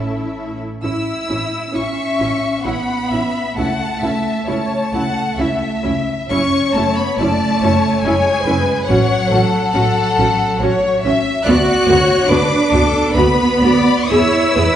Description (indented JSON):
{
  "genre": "classical, slow romantic movement for string orchestra",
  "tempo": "58-73 BPM",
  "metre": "3/4",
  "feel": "rubato",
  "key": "A major",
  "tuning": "A4 = 440 Hz",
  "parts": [
    { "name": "rich studio violin section", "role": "melody", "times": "0.0-14.8 s", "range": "F#5 to F#6", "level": "-21 LUFS", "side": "left 4 dB", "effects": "none" },
    { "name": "warm symphonic violin section", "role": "second line", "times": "0.0-14.8 s", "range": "A4 to F#5", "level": "-20 LUFS", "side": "left 2 dB", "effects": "none" },
    { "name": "warm studio viola section", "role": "accompaniment", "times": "0.0-14.6 s", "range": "B3 to G#4", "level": "-21 LUFS", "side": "equal", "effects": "none" },
    { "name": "rich symphonic cello section", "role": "bass", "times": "0.0-14.8 s", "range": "A2 to F#4", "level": "-19 LUFS", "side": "right 1 dB", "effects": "none" },
    { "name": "warm symphonic double bass section", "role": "bass", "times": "0.0-14.6 s", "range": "F#1 to E2", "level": "-22 LUFS", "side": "right 2 dB", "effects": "none" }
  ],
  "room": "wet scoring stage reverb, RT60 1.6 s",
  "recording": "heard from further back in the room, nothing above 10.8 kHz",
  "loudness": "-14 LUFS",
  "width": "side -10 dB against mid",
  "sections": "0.8-14.8 A section",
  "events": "none",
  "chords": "0.0 A; 3.6 A/C#; 6.3 F#m7; 8.9 F#m/A; 11.5 Bm/D; 14.1 E",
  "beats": "| 0.84 1.76 2.66 | 3.57 4.47 5.38 | 6.30 7.19 8.04 | 8.88 9.74 10.62 | 11.46 12.30 13.16 | 14.11"
}